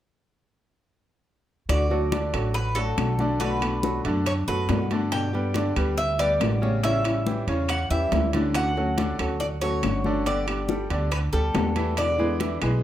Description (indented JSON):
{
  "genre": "latin, Cuban son and guajira",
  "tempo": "140 BPM",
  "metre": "4/4",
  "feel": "straight",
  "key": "D major",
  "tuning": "A4 = 440 Hz",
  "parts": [
    { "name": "Cuban tres", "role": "melody", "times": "1.7-12.6 s", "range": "A4 to G5", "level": "-28 LUFS", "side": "equal", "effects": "none" },
    { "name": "nylon-string guitar", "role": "accompaniment", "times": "1.7-12.8 s", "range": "B2 to G4", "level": "-30 LUFS", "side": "left 3 dB", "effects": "none" },
    { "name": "upright bass", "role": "bass", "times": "1.7-12.8 s", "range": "G1 to G2", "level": "-27 LUFS", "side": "right 1 dB", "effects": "none" },
    { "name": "bongos", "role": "percussion", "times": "1.7-12.6 s", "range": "none", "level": "-34 LUFS", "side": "left 7 dB", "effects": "none" },
    { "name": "claves", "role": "percussion", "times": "1.7-12.8 s", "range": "none", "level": "-41 LUFS", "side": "left 6 dB", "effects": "none" },
    { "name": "congas", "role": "percussion", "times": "1.7-12.8 s", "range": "none", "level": "-32 LUFS", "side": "left 4 dB", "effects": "none" },
    { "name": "timbales", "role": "percussion", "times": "1.7-12.8 s", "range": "none", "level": "-35 LUFS", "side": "right 5 dB", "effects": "none" },
    { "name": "bright grand piano", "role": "arpeggios", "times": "1.9-12.8 s", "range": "C#3 to E5", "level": "-30 LUFS", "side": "right 2 dB", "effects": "none" }
  ],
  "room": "moderate large studio reverb, RT60 0.8 s",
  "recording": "none",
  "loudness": "-22 LUFS",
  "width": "side -12 dB against mid",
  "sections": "1.7-12.8 A section",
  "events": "none",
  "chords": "1.7 D; 3.4 Bm7; 5.1 G; 6.8 A7; 8.6 Dmaj7; 10.3 Gadd9; 12.0 E7"
}